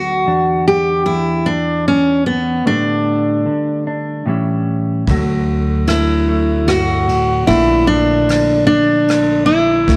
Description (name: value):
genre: acoustic folk-pop ballad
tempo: 75 BPM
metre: 3/4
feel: straight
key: unclear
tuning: A4 = 444 Hz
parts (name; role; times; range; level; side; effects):
- picked steel-string acoustic guitar; melody; 0.0-10.0 s; B3 to G4; -16 LUFS; equal; none
- mellow electric guitar; accompaniment; 0.0-10.0 s; D2 to F#4; -22 LUFS; equal; none
- upright bass; bass; 5.1-10.0 s; Bb1 to D2; -21 LUFS; equal; none
- soft brush drum kit; drums; 5.1-10.0 s; kick drum, ride cymbal, rim click; -28 LUFS; equal; none
room: light reverb, small room ambience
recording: none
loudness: -15 LUFS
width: mono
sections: 0.0-10.0 A section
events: none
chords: 0.3 E7(no3); 2.7 A7sus4; 4.3 A7; 5.1 D; 7.5 Bbmaj7